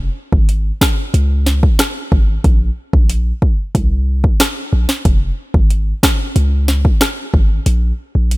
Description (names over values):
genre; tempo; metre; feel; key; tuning
dancehall; 92 BPM; 4/4; straight; unclear; A4 = 440 Hz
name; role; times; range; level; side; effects
warm 808-style bass; bass; 0.0-8.4 s; F1 to Db2; -14 LUFS; equal; none
afro-pop drum kit; drums; 0.3-8.4 s; hi-hat, kick drum, rim click, snare drum; -14 LUFS; equal; none
room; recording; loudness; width
little or no reverb; none; -12 LUFS; side -21 dB against mid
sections
0.0-8.4 A section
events
kick muted 7.7-8.4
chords
none